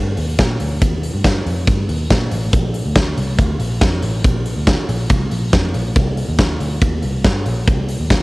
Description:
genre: jangly indie pop.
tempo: 140 BPM.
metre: 4/4.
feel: straight.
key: unclear.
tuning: A4 = 442 Hz.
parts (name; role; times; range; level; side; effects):
vintage muted picked electric bass; bass; 0.0-8.2 s; A1 to Bb2; -20 LUFS; equal; none.
big rock drum kit; drums; 0.2-8.2 s; hi-hat, kick drum, ride cymbal, snare drum; -16 LUFS; equal; cassette tape.
room: little or no reverb.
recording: home recording on cassette.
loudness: -15 LUFS.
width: side -22 dB against mid.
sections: 0.0-8.2 A section.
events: none.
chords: none.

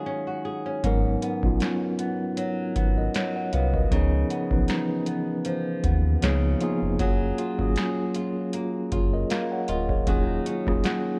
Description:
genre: contemporary R&B.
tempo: 78 BPM.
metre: 4/4.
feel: swing 54% on 16ths.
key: G# dorian.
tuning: A4 = 440 Hz.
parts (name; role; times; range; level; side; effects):
mellow tine electric piano; accompaniment; 0.0-11.2 s; E3 to G#5; -29 LUFS; equal; none.
flamenco guitar; arpeggios; 0.0-11.2 s; G#2 to G#4; -34 LUFS; equal; delay.
sub bass with octave; bass; 0.8-10.8 s; D1 to D#2; -28 LUFS; equal; none.
booming analog drum machine; drums; 0.8-11.0 s; hi-hat, kick drum, rim click, snare drum; -29 LUFS; equal; overdrive.
room: little or no reverb.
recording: worn, warbling old tape, cassette tape, warbly pitch drift.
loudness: -25 LUFS.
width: mono.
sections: 0.8-11.2 A section.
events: break 0.0-0.8.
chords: 0.0 D#m11; 0.8 G#m11; 3.9 C#9; 6.2 C#13; 7.0 F#maj9; 10.1 D#m11.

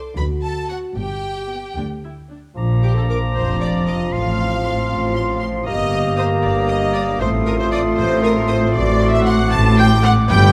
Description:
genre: cinematic, playful, whimsical film cue.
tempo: 78 BPM (dotted quarters).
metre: 6/8.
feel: straight.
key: Bb major.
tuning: A4 = 440 Hz.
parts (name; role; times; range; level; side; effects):
warm studio viola section; accompaniment; 0.0-10.5 s; B3 to A5; -25 LUFS; equal; none.
dark French horn section; sustained chords; 0.0-10.5 s; Bb3 to A4; -30 LUFS; equal; none.
rich studio violin section; melody; 0.2-10.1 s; F#5 to Eb6; -36 LUFS; equal; none.
rich studio violin section; second line; 0.2-10.5 s; F#4 to A5; -31 LUFS; equal; none.
clear studio double bass section; bass; 0.2-10.5 s; F1 to D2; -23 LUFS; equal; none.
warm studio cello section; bass; 0.2-10.5 s; D2 to D3; -23 LUFS; equal; none.
bright oboe; second line; 2.6-10.5 s; Bb5 to C6; -31 LUFS; equal; none.
dark clarinet; second line; 2.6-10.5 s; F4 to G4; -29 LUFS; equal; none.
silver concert flute; second line; 2.6-10.5 s; C6 to Eb6; -30 LUFS; equal; none.
clear bassoon; accompaniment; 2.6-10.5 s; F3 to Bb3; -27 LUFS; equal; none.
room: moderate scoring stage reverb, RT60 1.6 s.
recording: none.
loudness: -18 LUFS.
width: mono.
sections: 0.0-2.6 A section; 2.6-10.5 B section.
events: none.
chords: 0.2 D7; 1.0 G; 2.6 Bb; 4.1 F/A; 5.7 Eb/G; 7.2 F7/A; 8.8 D7/A.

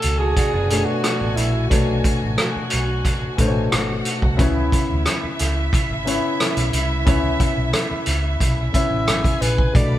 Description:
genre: lush 1970s-style soul.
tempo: 90 BPM.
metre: 4/4.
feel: straight.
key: unclear.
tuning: A4 = 441 Hz.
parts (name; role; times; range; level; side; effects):
breathy alto saxophone; melody; 0.0-3.7, 8.7-10.0 s; D4 to E5; -25 LUFS; right 1 dB; none.
warm studio violin section; second line; 0.0-10.0 s; E4 to B5; -28 LUFS; right 1 dB; none.
warm concert grand piano; accompaniment; 0.0-10.0 s; B2 to D5; -24 LUFS; left 3 dB; none.
vintage muted fingered electric bass; bass; 0.0-10.0 s; F#1 to D2; -23 LUFS; equal; none.
vintage drum kit; drums; 0.0-9.9 s; hi-hat, kick drum, rim click; -20 LUFS; equal; none.
electric guitar through a small old amp; riff; 0.2-1.5 s; B3 to A4; -27 LUFS; right 5 dB; none.
room: moderate studio reverb, RT60 0.5 s.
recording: band playing live in one room.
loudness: -17 LUFS.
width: side -13 dB against mid.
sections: 0.0-10.0 A section.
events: none.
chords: 0.0 Bm9; 4.4 C#m7.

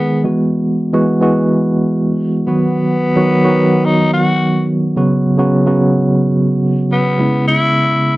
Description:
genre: pop.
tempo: 108 BPM.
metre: 4/4.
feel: straight.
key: unclear.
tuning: A4 = 440 Hz.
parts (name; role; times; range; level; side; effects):
raspy tenor saxophone; melody; 0.0-8.1 s; B3 to F#4; -16 LUFS; left 2 dB; slapback echo.
tine electric piano; accompaniment; 0.0-8.2 s; C#3 to G#4; -12 LUFS; right 1 dB; medium tremolo.
room: light reverb.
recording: dry, close 1970s-style studio recording.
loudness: -12 LUFS.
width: side -18 dB against mid.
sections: 0.0-7.2 A section.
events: none.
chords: 0.2 Eadd9; 2.5 B/D#; 5.0 F#sus4; 7.2 C#m7.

